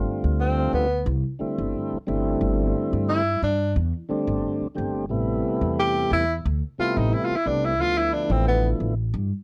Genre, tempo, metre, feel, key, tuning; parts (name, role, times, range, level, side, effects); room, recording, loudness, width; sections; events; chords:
electric jazz fusion; 89 BPM; 4/4; straight; A4 = 443 Hz
tonewheel organ; accompaniment; 0.0-8.9 s; C3 to G4; -28 LUFS; equal; slow rotary speaker
upright bass; bass; 0.0-9.3 s; G1 to G2; -28 LUFS; equal
warm tenor saxophone; melody; 0.4-8.7 s; B3 to G4; -25 LUFS; equal
little or no reverb; dry, close 1970s-style studio recording; -24 LUFS; mono
0.0-9.4 A section
tenor saxophone solo 0.0-9.4
0.0 G9sus4; 2.1 C69/G; 5.1 Am9; 7.8 Dm69